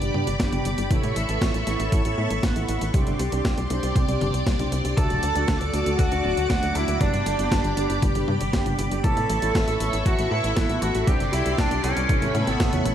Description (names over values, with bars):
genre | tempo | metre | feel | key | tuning
italo disco | 118 BPM | 4/4 | straight | unclear | A4 = 440 Hz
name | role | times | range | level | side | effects
string machine, full ensemble | sustained chords | 0.0-12.9 s | F#4 to D6 | -28 LUFS | equal | ensemble chorus
mellow synth brass | stabs | 0.0-12.9 s | A3 to G5 | -30 LUFS | right 3 dB | chorus, diffuse ambient delay
tight sequencer bass | bass | 0.0-12.9 s | D1 to A2 | -26 LUFS | equal | none
clean 12-bit digital drum machine | drums | 0.0-12.9 s | hi-hat, snare drum, toms | -30 LUFS | left 1 dB | studio reverb
electronic kick drum | drums | 0.4-12.7 s | none | -24 LUFS | equal | studio reverb
lead guitar through a small cranked amp | melody | 5.0-12.8 s | C#4 to A4 | -26 LUFS | equal | overdrive, vintage 12-bit sampler grit, diffuse ambient delay
room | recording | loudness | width
moderate plate reverb, RT60 2.2 s | dreamy mix soaked in reverb, vinyl crackle | -20 LUFS | side -10 dB against mid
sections
0.0-12.9 A section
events
drum fill 12.6-12.9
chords
0.0 G; 0.9 Aadd9; 2.9 Csus2; 5.0 D; 7.0 G; 9.0 Aadd9; 11.1 Csus2; 12.1 Aadd9